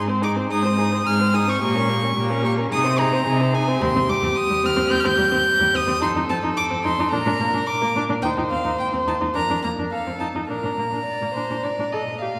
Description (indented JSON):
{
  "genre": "quick classical-period movement for string quartet",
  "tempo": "108 BPM",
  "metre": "4/4",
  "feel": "straight",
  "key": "Bb major from 3.8 s",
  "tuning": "A4 = 437 Hz",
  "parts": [
    { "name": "rich violin", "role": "melody", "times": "0.0-12.4 s", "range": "F5 to G6", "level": "-26 LUFS", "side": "equal", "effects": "none" },
    { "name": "dark violin", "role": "second line", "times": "0.0-12.4 s", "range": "G4 to F5", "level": "-28 LUFS", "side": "equal", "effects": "none" },
    { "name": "warm viola", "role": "accompaniment", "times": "0.0-12.3 s", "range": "G3 to A4", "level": "-28 LUFS", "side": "equal", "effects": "none" },
    { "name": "rich cello", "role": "bass", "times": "0.0-12.4 s", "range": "Eb2 to C3", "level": "-28 LUFS", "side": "equal", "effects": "none" }
  ],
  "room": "wet church reverb, RT60 2.7 s",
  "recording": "recorded in a church or concert hall, vinyl crackle",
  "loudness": "-21 LUFS",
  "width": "mono",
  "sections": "0.0-12.4 A section",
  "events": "none",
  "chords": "0.0 Ab; 1.6 Gdim/Bb; 2.7 Ab/C; 3.8 Cm/Eb; 6.0 F7; 7.1 Bb; 8.2 Cm/Eb; 9.4 Bb/F; 9.9 F7; 10.5 Bb"
}